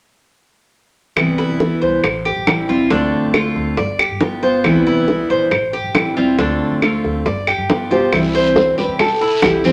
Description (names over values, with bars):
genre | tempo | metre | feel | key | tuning
latin, Cuban son and guajira | 138 BPM | 4/4 | straight | C major | A4 = 440 Hz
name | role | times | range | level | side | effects
picked steel-string acoustic guitar | accompaniment | 1.2-9.7 s | C3 to F4 | -20 LUFS | equal | none
upright bass | bass | 1.2-9.7 s | G1 to C3 | -31 LUFS | equal | none
bongos | percussion | 1.2-9.6 s | none | -23 LUFS | equal | none
claves | percussion | 1.2-9.6 s | none | -22 LUFS | equal | none
Cuban tres | arpeggios | 1.4-9.7 s | C4 to D5 | -22 LUFS | equal | none
nylon-string guitar | melody | 7.9-9.7 s | E4 to C5 | -19 LUFS | equal | none
guiro | percussion | 8.1-9.7 s | none | -31 LUFS | equal | none
room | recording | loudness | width
wet studio reverb, RT60 0.8 s | none | -16 LUFS | mono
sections
1.2-8.1 A section; 8.1-9.7 B section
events
none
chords
1.2 Cmaj7; 2.0 Am7; 2.9 Dm7; 3.8 G7; 4.6 Cmaj7; 5.5 Am7; 6.4 Dm7; 7.3 G7; 8.1 C